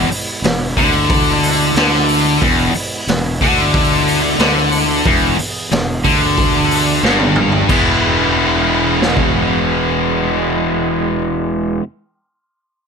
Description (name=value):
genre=blues rock power trio and southern rock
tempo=91 BPM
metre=4/4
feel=straight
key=E mixolydian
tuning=A4 = 441 Hz
part: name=bright tonewheel organ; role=sustained chords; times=0.0-11.1 s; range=E3 to G#4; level=-26 LUFS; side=right 6 dB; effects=slow rotary speaker, overdrive
part: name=distorted electric guitar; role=riff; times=0.0-11.8 s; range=E2 to E4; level=-14 LUFS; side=left 1 dB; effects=overdrive
part: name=fuzz fingered electric bass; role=bass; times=0.0-11.8 s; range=E1 to D2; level=-20 LUFS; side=equal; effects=overdrive
part: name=raw garage drum kit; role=drums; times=0.1-9.3 s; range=crash cymbal, hi-hat, kick drum, snare drum, toms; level=-18 LUFS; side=equal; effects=none
room=light reverb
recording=none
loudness=-12 LUFS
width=side -6 dB against mid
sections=0.0-7.7 A section; 7.7-10.3 B section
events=drum fill 7.0-7.7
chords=0.0 E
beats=0.44 1.10 1.76 | 2.42 3.08 3.74 4.40 | 5.05 5.71 6.37 7.03 | 7.69 8.35 9.01 9.66